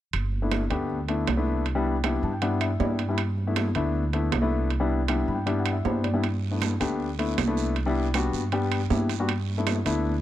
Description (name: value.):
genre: Afro-Cuban jazz.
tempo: 157 BPM.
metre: 4/4.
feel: straight.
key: G major.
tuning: A4 = 439 Hz.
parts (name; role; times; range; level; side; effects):
upright bass; bass; 0.1-10.2 s; G1 to G2; -28 LUFS; right 1 dB; none.
claves; percussion; 0.1-9.9 s; none; -38 LUFS; right 17 dB; none.
congas; percussion; 0.1-10.2 s; none; -33 LUFS; right 2 dB; none.
timbales; percussion; 0.1-10.1 s; none; -32 LUFS; right 11 dB; none.
warm baby grand piano; accompaniment; 0.4-10.1 s; G3 to B5; -27 LUFS; left 3 dB; none.
guiro; percussion; 6.2-10.2 s; none; -41 LUFS; right 17 dB; none.
room: little or no reverb.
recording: dry, close 1970s-style studio recording.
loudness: -23 LUFS.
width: side -13 dB against mid.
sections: 0.1-10.2 A section.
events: grand piano fill 2.0-3.2, 5.1-6.2.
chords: 0.1 G69; 1.7 Cmaj7; 3.2 G69; 4.7 Cmaj7; 6.2 G69; 7.8 Cmaj7; 9.3 G69.